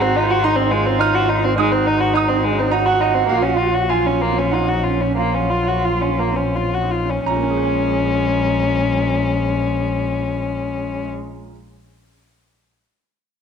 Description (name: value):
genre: neoclassical piano and strings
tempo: 82-107 BPM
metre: 3/4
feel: rubato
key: Bb minor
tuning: A4 = 440 Hz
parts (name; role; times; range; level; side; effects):
- muted violin; melody; 0.0-11.1 s; Ab3 to Gb4; -20 LUFS; left 6 dB; none
- muted cello; second line; 0.0-11.1 s; Ab3 to Gb4; -23 LUFS; right 9 dB; none
- clear upright piano; accompaniment; 0.0-11.5 s; Ab2 to F6; -23 LUFS; right 11 dB; none
- muted double bass; bass; 0.0-11.1 s; Ab1 to Bb1; -23 LUFS; left 1 dB; none
room: moderate echo chamber reverb, RT60 1.6 s, studio ambience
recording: 1960s-style stereo with parts hard left and right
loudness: -16 LUFS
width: side -7 dB against mid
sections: 0.0-7.3 A section; 7.3-11.5 B section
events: slowing down 2.4-7.3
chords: 0.0 Ab7; 3.3 Gbmaj7/Bb; 7.3 Bbm7